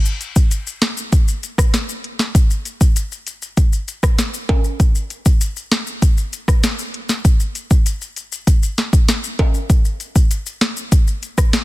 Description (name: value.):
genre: dancehall.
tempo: 98 BPM.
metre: 4/4.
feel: straight.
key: none.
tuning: none.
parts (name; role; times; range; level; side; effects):
maracas and timbales; percussion; 0.1-11.6 s; none; -27 LUFS; left 3 dB; none.
afro-pop drum kit; drums; 0.2-11.6 s; hi-hat, kick drum, rim click, snare drum; -14 LUFS; equal; none.
room: little or no reverb.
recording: dense, heavily limited modern master.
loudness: -15 LUFS.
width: side -19 dB against mid.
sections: 0.0-11.6 A section.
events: none.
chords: none.